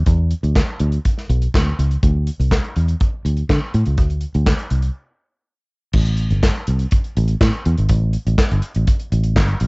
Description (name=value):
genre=disco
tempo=122 BPM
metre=4/4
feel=straight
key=unclear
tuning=A4 = 438 Hz
part: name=fingered electric bass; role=bass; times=0.0-9.7 s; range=G1 to D3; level=-16 LUFS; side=equal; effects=none
part: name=warm soul drum kit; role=drums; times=0.1-9.7 s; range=crash cymbal, handclaps, hi-hat, kick drum, snare drum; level=-18 LUFS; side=equal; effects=cassette tape
room=little or no reverb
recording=home recording on cassette, nothing above 7.9 kHz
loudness=-16 LUFS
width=side -34 dB against mid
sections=0.0-5.9 A section; 5.9-9.7 A section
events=break 5.0-5.9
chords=none